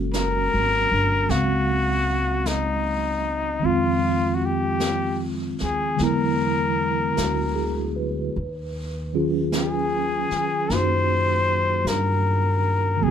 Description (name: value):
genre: jazz ballad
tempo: 51 BPM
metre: 4/4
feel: swing 67% on 8ths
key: unclear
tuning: A4 = 438 Hz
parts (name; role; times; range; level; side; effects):
- mellow tine electric piano; accompaniment; 0.0-13.1 s; D3 to F5; -25 LUFS; right 2 dB; medium stereo tremolo
- upright bass; bass; 0.0-13.1 s; Gb1 to G2; -26 LUFS; equal; none
- trumpet with straight mute; melody; 0.1-13.1 s; Eb4 to C5; -23 LUFS; left 3 dB; none
- jazz brush drum kit; drums; 0.1-13.1 s; brushed snare drum, hi-hat, snare drum; -34 LUFS; left 2 dB; none
room: moderate studio ambience, RT60 0.5 s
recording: none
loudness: -20 LUFS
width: side -8 dB against mid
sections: 0.0-13.1 A section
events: none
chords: 0.0 Gbmaj9; 3.6 Fm7; 6.0 E9; 8.3 Ebm11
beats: 0.14 1.30 2.46 | 3.63 4.80 5.97 7.16 | 8.34 9.52 10.70 11.87 | 13.03